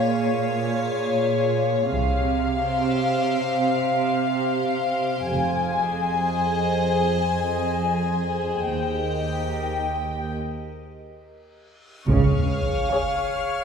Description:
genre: cinematic, suspense film score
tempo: free time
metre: none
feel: none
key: F minor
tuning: A4 = 440 Hz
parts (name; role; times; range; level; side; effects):
- muted studio violin section; melody; 0.0-13.6 s; Db5 to Ab5; -26 LUFS; left 4 dB; none
- evolving wavetable pad; sustained chords; 0.0-13.6 s; G4 to F5; -26 LUFS; left 2 dB; phaser, built-in reverb
- muted studio cello section; bass; 0.0-12.8 s; Eb2 to Db3; -26 LUFS; right 5 dB; none
- muted studio double bass section; bass; 1.9-12.8 s; F1 to Eb2; -28 LUFS; right 2 dB; none
- reverse cymbal and sub drop; sound effects; 12.1-13.6 s; none; -29 LUFS; left 1 dB; none
- taiko ensemble; drums; 12.1-13.6 s; none; -28 LUFS; left 1 dB; none
- muted studio violin section; texture; 12.1-13.6 s; Db6 to F6; -32 LUFS; left 3 dB; none
- muted studio violin section; second line; 12.9-13.6 s; Ab4 to Db5; -27 LUFS; left 2 dB; none
room: wet scoring stage reverb, RT60 1.5 s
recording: minimal, uncompressed stereo recording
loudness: -21 LUFS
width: side -6 dB against mid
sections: 0.0-12.1 A section; 12.1-13.6 B section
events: break 10.4-12.1; reverse cymbal 12.1; band accent 12.1-12.9; impact 12.1-13.6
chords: 0.0 Bbm7; 1.9 Csus4; 5.3 Fm7; 8.7 Eb; 12.1 Db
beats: free time

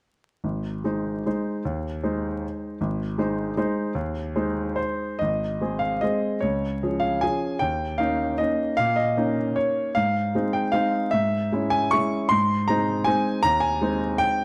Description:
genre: classical, piano waltz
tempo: 131-164 BPM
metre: 3/4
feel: rubato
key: Ab major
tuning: A4 = 440 Hz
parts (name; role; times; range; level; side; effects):
- clear grand piano; solo; 0.4-14.4 s; Ab1 to Db6; -24 LUFS; equal; none
room: light reverb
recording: close, detailed microphones, vinyl crackle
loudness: -25 LUFS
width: mono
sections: 0.4-5.2 A section; 5.2-14.4 B section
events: none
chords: 0.4 Ab; 6.4 Db; 7.6 Eb7; 10.0 Ab; 11.1 Dbm/Ab; 12.3 Ab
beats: | 0.43 0.84 1.26 | 1.66 2.04 2.43 | 2.82 3.20 3.57 | 3.96 4.35 4.77 | 5.21 5.61 6.02 | 6.42 6.81 7.22 | 7.61 8.00 8.40 | 8.78 9.16 9.56 | 9.96 10.34 10.74 | 11.13 11.52 11.92 | 12.31 12.69 13.07 | 13.45 13.82 14.20

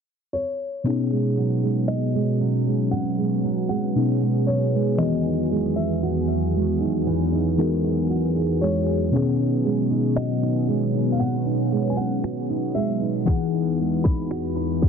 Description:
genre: contemporary R&B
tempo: 58 BPM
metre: 4/4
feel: straight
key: B major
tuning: A4 = 440 Hz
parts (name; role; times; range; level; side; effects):
- dark grand piano; melody; 0.3-14.9 s; C#5 to B5; -32 LUFS; left 1 dB; digital delay
- muted felt-like synth keys; accompaniment; 0.8-14.9 s; B2 to A#4; -24 LUFS; left 2 dB; chorus
- lush unison pad; sustained chords; 1.4-14.9 s; E2 to G#4; -25 LUFS; left 2 dB; chorus, phaser, sidechain pumping
- nylon-string guitar; arpeggios; 0.9-14.9 s; B2 to F#4; -26 LUFS; right 8 dB; digital delay
- trap drum kit; drums; 10.2-14.9 s; finger snaps, kick drum; -20 LUFS; left 1 dB; soft clipping on snare
room: small room ambience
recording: dense, heavily limited modern master, low-pass filter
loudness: -20 LUFS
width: side -6 dB against mid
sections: 0.9-14.9 A section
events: filter sweep 0.9-14.9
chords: 0.0 N.C.; 0.9 B6; 5.0 Emaj9; 9.1 B6; 13.3 Emaj9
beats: | 0.86 1.89 2.93 3.96 | 5.00 6.03 7.07 8.10 | 9.13 10.17 11.20 12.24 | 13.27 14.31

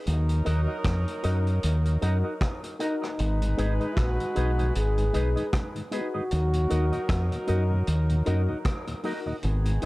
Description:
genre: roots reggae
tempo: 77 BPM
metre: 4/4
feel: swing 58% on 16ths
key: Eb minor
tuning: A4 = 440 Hz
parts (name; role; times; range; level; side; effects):
- warm horn section; second line; 0.1-9.9 s; Eb3 to Cb5; -36 LUFS; equal; none
- deep dub fingered electric bass; bass; 0.1-9.9 s; Ab1 to Gb2; -24 LUFS; equal; none
- vintage drum kit; drums; 0.1-9.9 s; hi-hat, kick drum, rim click; -31 LUFS; equal; none
- electric guitar with an envelope filter; accompaniment; 0.4-9.9 s; Eb4 to Eb5; -36 LUFS; right 2 dB; none
- dark upright piano; stabs; 0.4-9.9 s; Eb4 to Cb5; -36 LUFS; left 5 dB; none
- breathy trombone; melody; 2.8-8.2 s; Eb4 to Ab4; -31 LUFS; equal; none
- mellow tonewheel organ; accompaniment; 3.4-9.9 s; Eb2 to Eb4; -37 LUFS; left 2 dB; slow rotary speaker
room: light reverb, small room ambience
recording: dark, warm production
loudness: -24 LUFS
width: side -20 dB against mid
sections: 0.0-9.9 A section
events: none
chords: 0.1 Ebm; 3.2 Abm; 6.3 Ebm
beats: | 0.07 0.84 1.63 2.41 | 3.19 3.97 4.75 5.53 | 6.31 7.09 7.87 8.65 | 9.43

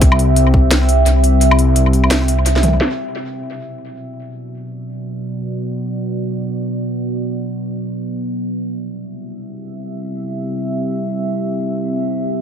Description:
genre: half-time drum and bass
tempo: free time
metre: none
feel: none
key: B phrygian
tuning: A4 = 440 Hz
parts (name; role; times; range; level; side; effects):
- deep dark ambient pad; sustained chords; 0.0-12.4 s; B3 to E5; -20 LUFS; equal; chorus, built-in reverb, sidechain pumping
- dark detuned saw bass; bass; 0.0-2.8 s; C2; -13 LUFS; equal; tube saturation
- drum and bass drum kit; drums; 0.0-2.9 s; hi-hat, snare drum, toms, woodblock; -19 LUFS; left 1 dB; low-pass filter on hats, low-pass filter on perc, low-pass filter on snare, low-pass filter on toms, tape echo
- electronic kick drum; drums; 0.0-0.6 s; none; -11 LUFS; equal; none
room: moderate spring reverb, RT60 1.8 s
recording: echo-heavy mix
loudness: -15 LUFS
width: side -8 dB against mid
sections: 0.0-2.8 A section; 2.8-12.4 B section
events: drop 0.0-2.8; kick drops out 1.4-2.8; drum fill 2.5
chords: 0.0 C; 2.8 Bm; 8.4 C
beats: free time

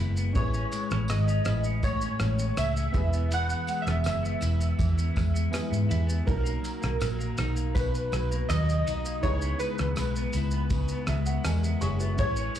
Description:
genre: indie pop, bedroom pop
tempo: 81 BPM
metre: 4/4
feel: straight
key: unclear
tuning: A4 = 440 Hz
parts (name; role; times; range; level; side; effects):
- semi-hollow electric guitar; accompaniment; 0.0-12.6 s; A2 to E4; -33 LUFS; left 4 dB; lush chorus, warbly pitch drift, plate reverb
- warm upright piano; accompaniment; 0.0-12.6 s; B3 to C#6; -39 LUFS; right 4 dB; cassette tape, plate reverb, slapback echo
- vintage muted fingered electric bass; bass; 0.0-12.5 s; E1 to G#2; -27 LUFS; equal; none
- cloth-damped thuddy drum kit; drums; 0.2-12.6 s; kick drum, ride cymbal, rim click, shaker; -33 LUFS; equal; none
- soft electric-piano-like synth keys; melody; 0.4-12.6 s; A#4 to F#5; -32 LUFS; right 1 dB; ensemble chorus, slapback echo, plate reverb
- tambourine; percussion; 0.7-12.6 s; none; -48 LUFS; right 4 dB; none
room: little or no reverb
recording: live gig heard through the venue's PA, club reverb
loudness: -25 LUFS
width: side -10 dB against mid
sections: 0.0-12.6 A section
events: upright piano fill 5.2-6.3, 10.7-12.2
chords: 0.4 Amaj7; 2.9 E; 6.3 Bmaj7; 9.2 C#m7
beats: | 0.36 1.10 1.84 2.58 | 3.32 4.06 4.80 5.54 | 6.28 7.01 7.75 8.49 | 9.23 9.97 10.71 11.45 | 12.19

